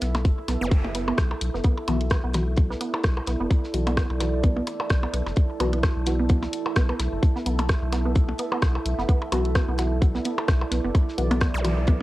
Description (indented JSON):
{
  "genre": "minimal techno",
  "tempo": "129 BPM",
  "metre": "4/4",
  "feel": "swing 56% on 16ths",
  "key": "B minor",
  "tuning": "A4 = 440 Hz",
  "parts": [
    { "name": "resonant blip pluck", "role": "riff", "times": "0.0-11.9 s", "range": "B3", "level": "-31 LUFS", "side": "right 2 dB", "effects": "chorus, phaser, cassette tape, sidechain pumping, analog delay" },
    { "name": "round analog bass", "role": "bass", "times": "0.0-12.0 s", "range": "F#1 to B1", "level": "-26 LUFS", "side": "equal", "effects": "sidechain pumping" },
    { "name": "damped 70s drum kit", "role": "drums", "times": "0.0-12.0 s", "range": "hi-hat, snare drum", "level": "-44 LUFS", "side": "left 1 dB", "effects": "high-pass filter on hats, studio reverb, cassette tape, high-pass filter on snare, high-pass filter on room" },
    { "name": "garage drum kit", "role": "drums", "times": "0.0-11.7 s", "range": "hi-hat, rim click", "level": "-31 LUFS", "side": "equal", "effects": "studio reverb, cassette tape" },
    { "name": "deep dark ambient pad", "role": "texture", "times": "0.0-12.0 s", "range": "E4 to E5", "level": "-31 LUFS", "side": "right 3 dB", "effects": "chorus, built-in reverb, sidechain pumping, cassette tape" },
    { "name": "percussion blips", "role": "percussion", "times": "0.1-11.7 s", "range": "none", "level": "-32 LUFS", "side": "left 1 dB", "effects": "studio reverb, cassette tape, analog delay" },
    { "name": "electronic kick drum", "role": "drums", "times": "0.2-12.0 s", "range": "none", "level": "-21 LUFS", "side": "equal", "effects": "studio reverb, cassette tape" },
    { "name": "zap", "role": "sound effects", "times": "0.6-0.7, 11.5-11.6 s", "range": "none", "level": "-34 LUFS", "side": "equal", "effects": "none" },
    { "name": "filtered dub chord stab", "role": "stabs", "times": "1.9-6.1, 9.3-11.7 s", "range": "E3 to F#4", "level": "-30 LUFS", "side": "left 2 dB", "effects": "phaser, analog chorus, cassette tape, analog delay" }
  ],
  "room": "light reverb",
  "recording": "home recording on cassette",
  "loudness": "-21 LUFS",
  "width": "side -17 dB against mid",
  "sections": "0.0-12.0 A section",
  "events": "fade-in on ambient pad 0.0-12.0; filter sweep on synth stab 0.0-12.0",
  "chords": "0.0 Bsus4",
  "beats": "0.25 | 0.72 1.18 1.65 2.11 | 2.58 3.04 3.51 3.97 | 4.44 4.90 5.37 5.83 | 6.30 6.76 7.23 7.69 | 8.16 8.62 9.09 9.55 | 10.02 10.48 10.95 11.41 | 11.88"
}